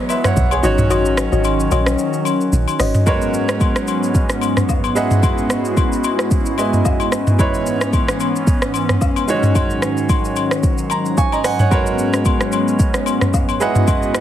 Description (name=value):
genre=amapiano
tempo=111 BPM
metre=4/4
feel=swing 55% on 16ths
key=G# minor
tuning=A4 = 438 Hz
part: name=clear grand piano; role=accompaniment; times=0.0-14.2 s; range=G#3 to C#6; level=-22 LUFS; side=right 4 dB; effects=none
part: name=hollow soft pad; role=sustained chords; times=0.0-14.2 s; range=G#2 to F#4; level=-20 LUFS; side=left 1 dB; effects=chorus, sidechain pumping
part: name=afro-pop drum kit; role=drums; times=0.1-14.2 s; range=hi-hat, kick drum, rim click, shaker, toms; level=-17 LUFS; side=equal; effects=none
part: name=agogo bells and woodblock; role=percussion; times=0.1-14.0 s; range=none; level=-26 LUFS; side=left 12 dB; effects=none
part: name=deep log drum bass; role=bass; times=0.4-2.9 s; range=G#1 to B1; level=-18 LUFS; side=equal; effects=none
part: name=soft round pluck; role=stabs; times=0.6-3.0 s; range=F#4 to D#5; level=-24 LUFS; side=left 5 dB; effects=chorus, ping-pong delay
room=little or no reverb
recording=heavily compressed radio sound, multiband compression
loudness=-14 LUFS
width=side -11 dB against mid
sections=0.0-3.1 A section; 3.1-14.2 B section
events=drop 0.0-3.1; kick muted 0.9-3.1; grand piano fill 10.6-11.7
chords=0.0 F#9sus4; 0.6 D#m7/G#; 3.1 G#m11; 5.0 C#m11/G#; 7.4 E6/G#; 9.3 D#m7/G#; 11.7 G#m11; 13.6 C#m11/G#